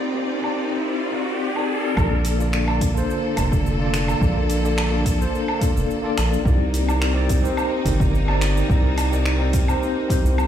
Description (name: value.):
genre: sunset chillout.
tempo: 107 BPM.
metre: 4/4.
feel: straight.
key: Bb major.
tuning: A4 = 440 Hz.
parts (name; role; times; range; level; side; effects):
bright tine electric piano; accompaniment; 0.0-10.5 s; Bb3 to D5; -24 LUFS; left 1 dB; medium stereo tremolo, auto-pan, tape echo.
clear symphonic string section; sustained chords; 0.0-10.5 s; D3 to D5; -29 LUFS; left 1 dB; none.
deep house drum kit; drums; 0.0-10.5 s; cabasa, finger snaps, hi-hat, woodblock; -28 LUFS; equal; low-pass filter on perc, low-pass filter on hats, low-pass filter on snare, low-pass filter on room.
riser; sound effects; 0.0-2.0 s; none; -28 LUFS; right 1 dB; none.
round analog bass; bass; 2.0-10.5 s; F1 to C2; -21 LUFS; equal; none.
electronic kick drum; drums; 2.0-10.2 s; none; -22 LUFS; equal; none.
room: light reverb, digital ambience.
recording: played on a big sound system in a bare room, stone room reverb.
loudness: -18 LUFS.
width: side -10 dB against mid.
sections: 0.0-2.0 A section; 2.0-10.5 B section.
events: riser 0.0-2.0.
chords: 0.0 Cm9; 2.0 Bbmaj7; 6.5 Cm9.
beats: 0.29 0.85 1.41 | 1.97 2.53 3.09 3.65 | 4.21 4.77 5.33 5.90 | 6.46 7.02 7.58 8.14 | 8.70 9.26 9.82 10.38.